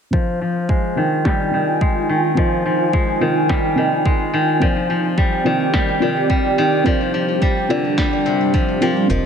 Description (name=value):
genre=organic downtempo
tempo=107 BPM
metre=4/4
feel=swing 57% on 16ths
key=F dorian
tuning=A4 = 440 Hz
part: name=deep mellow chord stab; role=accompaniment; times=0.1-9.3 s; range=C4 to G5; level=-24 LUFS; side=equal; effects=chorus, sidechain pumping, ping-pong delay
part: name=ethereal airy pad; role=sustained chords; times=1.1-9.3 s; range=G3 to Ab5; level=-22 LUFS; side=right 1 dB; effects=ensemble chorus, built-in reverb, tremolo, sidechain pumping
part: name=steel-string zither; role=arpeggios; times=0.1-9.3 s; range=C3 to Ab3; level=-18 LUFS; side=left 1 dB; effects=low-pass filter, ping-pong delay
part: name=electronic kick drum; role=drums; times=0.1-9.2 s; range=none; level=-19 LUFS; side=equal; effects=overdrive
part: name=electronic snare drum and shaker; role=drums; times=1.3-9.2 s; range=none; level=-26 LUFS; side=equal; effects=overdrive, low-pass filter on snare, low-pass filter on perc
part: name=round analog bass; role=bass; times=9.1-9.2 s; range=F1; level=-21 LUFS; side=equal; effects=none
room=moderate lush hall reverb, RT60 2.6 s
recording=none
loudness=-15 LUFS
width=side -7 dB against mid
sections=0.1-9.3 A section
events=filter sweep on drum 0.1-9.3; filter sweep on guzheng 0.1-9.3; filter sweep on synth stab 0.1-9.3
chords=0.1 Fm9; 4.6 Cm11; 6.9 Gm7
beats=| 0.13 0.69 1.25 1.81 | 2.37 2.93 3.50 4.05 | 4.62 5.18 5.74 6.30 | 6.86 7.42 7.98 8.54 | 9.10